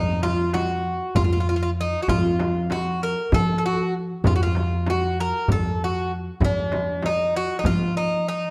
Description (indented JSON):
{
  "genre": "Turkish makam ensemble",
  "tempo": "194 BPM (eighths)",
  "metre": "7/8",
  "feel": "straight",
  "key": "F makam hicaz",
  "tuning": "A4 = 438 Hz",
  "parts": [
    { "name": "Greek bouzouki", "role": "melody", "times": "0.0-8.5 s", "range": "D4-40c to Bb4", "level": "-27 LUFS", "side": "equal", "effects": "none" },
    { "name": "upright bass", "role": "bass", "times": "0.0-8.4 s", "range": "F2 to F3", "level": "-27 LUFS", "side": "equal", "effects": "none" },
    { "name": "darbuka", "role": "percussion", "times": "0.2-7.8 s", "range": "none", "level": "-30 LUFS", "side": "equal", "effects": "none" },
    { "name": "frame drum", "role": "percussion", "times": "0.2-7.8 s", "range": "none", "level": "-32 LUFS", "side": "equal", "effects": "none" }
  ],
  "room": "moderate recital hall reverb, RT60 1.4 s",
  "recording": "dark, warm production",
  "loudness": "-23 LUFS",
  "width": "mono",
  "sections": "0.0-8.5 A section",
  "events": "none",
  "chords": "none",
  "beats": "0.23 0.54 0.85 1.16 1.46 1.77 | 2.08 2.39 2.70 3.01 3.32 3.63 3.94 | 4.25 4.56 4.87 5.18 5.49 5.79 6.10 | 6.41 6.72 7.03 7.34 7.65 7.96 8.27"
}